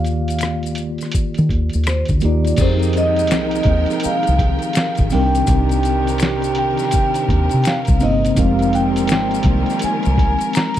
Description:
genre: R&B, neo-soul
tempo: 83 BPM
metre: 4/4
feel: swing 64% on 16ths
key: F dorian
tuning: A4 = 440 Hz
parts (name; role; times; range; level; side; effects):
- vibraphone with soft mallets; melody; 0.0-10.8 s; C5 to Bb5; -22 LUFS; equal; slapback echo
- mellow tine electric piano; accompaniment; 0.0-10.8 s; C3 to D5; -21 LUFS; left 1 dB; fast stereo tremolo
- deep dub fingered electric bass; bass; 0.0-10.3 s; F1 to Eb3; -19 LUFS; equal; none
- lo-fi sampler-style drum kit; drums; 0.0-10.8 s; crash cymbal, hi-hat, kick drum, rim click, snare drum; -20 LUFS; equal; none
- maracas and finger snaps; percussion; 0.1-10.8 s; none; -31 LUFS; left 11 dB; none
- warm studio string section; sustained chords; 2.6-10.8 s; Eb3 to G5; -28 LUFS; left 1 dB; none
- dark saxophone section; stabs; 2.6-10.5 s; C3 to G4; -25 LUFS; right 9 dB; none
room: small room reverb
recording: dry, close 1970s-style studio recording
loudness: -15 LUFS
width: side -11 dB against mid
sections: 0.0-2.6 A section; 2.6-10.8 B section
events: none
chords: 0.0 Ebmaj9; 2.6 Fm11; 5.1 Cm9; 8.4 Fm11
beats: 0.42 1.14 1.86 | 2.59 3.31 4.03 4.75 | 5.48 6.20 6.92 7.65 | 8.37 9.09 9.81 10.54

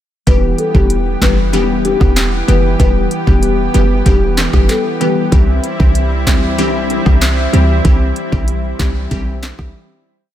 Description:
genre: dancehall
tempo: 95 BPM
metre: 4/4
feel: straight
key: E minor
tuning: A4 = 440 Hz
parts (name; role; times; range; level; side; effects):
- marimba with medium mallets; melody; 0.3-5.1 s; G4 to B4; -20 LUFS; left 6 dB; none
- glassy wavetable pluck; accompaniment; 0.3-9.7 s; E3 to G4; -18 LUFS; left 1 dB; chorus, sidechain pumping
- lush unison pad; sustained chords; 0.3-10.3 s; E3 to G4; -21 LUFS; right 1 dB; chorus, sidechain pumping
- short 808-style bass; bass; 0.3-9.7 s; E1 to D2; -15 LUFS; equal; none
- afro-pop drum kit; drums; 0.3-9.7 s; handclaps, hi-hat, kick drum, rim click, snare drum; -14 LUFS; equal; none
- bongos; percussion; 0.3-9.7 s; none; -27 LUFS; right 2 dB; none
room: little or no reverb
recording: none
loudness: -11 LUFS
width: side -12 dB against mid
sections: 0.3-10.3 chorus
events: fade-out 7.8-10.3; break 9.7-10.3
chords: 0.3 Em; 5.3 C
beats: | 0.27 0.90 1.53 2.17 | 2.80 3.43 4.06 4.69 | 5.32 5.96 6.59 7.22 | 7.85 8.48 9.11 9.74

